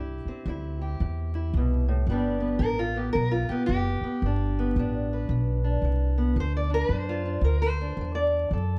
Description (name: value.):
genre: acoustic country blues, solo or duo.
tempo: 112 BPM.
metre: 4/4.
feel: swing 61% on 8ths.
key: G major.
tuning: A4 = 436 Hz.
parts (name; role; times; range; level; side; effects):
fingerpicked steel-string acoustic guitar; melody; 0.0-8.8 s; G2 to D5; -30 LUFS; equal; none.
upright bass; bass; 0.0-8.8 s; F#1 to F#2; -29 LUFS; equal; none.
room: light reverb.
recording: close, detailed microphones, vinyl crackle.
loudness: -27 LUFS.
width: mono.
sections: 0.0-8.8 A section.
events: none.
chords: 0.0 C; 2.1 G; 6.4 D.